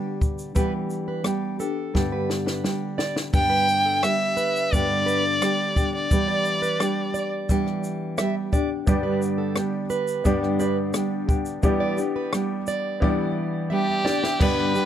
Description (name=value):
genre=acoustic pop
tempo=87 BPM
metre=4/4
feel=straight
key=G major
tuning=A4 = 440 Hz
part: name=nylon-string guitar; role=accompaniment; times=0.0-14.9 s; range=G2 to G4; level=-25 LUFS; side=equal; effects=none
part: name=compact cocktail drum kit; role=drums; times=0.2-14.9 s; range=crash cymbal, kick drum, rim click, shaker, snare drum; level=-24 LUFS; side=equal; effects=none
part: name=fingerpicked plugged-in steel-string acoustic guitar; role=arpeggios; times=0.6-14.6 s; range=A4 to E5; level=-31 LUFS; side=right 5 dB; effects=none
part: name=warm violin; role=melody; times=3.3-7.3, 13.7-14.9 s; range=G4 to G5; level=-23 LUFS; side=equal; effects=none
part: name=warm concert grand piano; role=accompaniment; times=8.9-14.9 s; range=B3 to G5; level=-30 LUFS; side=left 2 dB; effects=none
room=little or no reverb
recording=close, detailed microphones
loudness=-21 LUFS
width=side -10 dB against mid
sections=0.0-3.3 A section; 3.3-14.4 B section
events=drum fill 1.9-3.3, 13.0-14.4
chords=0.0 G; 0.6 Em7; 1.9 G; 6.1 Em7; 8.9 G; 11.6 Em7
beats=| 0.56 1.26 1.95 2.64 | 3.34 4.03 4.72 5.42 | 6.11 6.80 7.49 8.19 | 8.88 9.57 10.26 10.95 | 11.64 12.34 13.03 13.72 | 14.41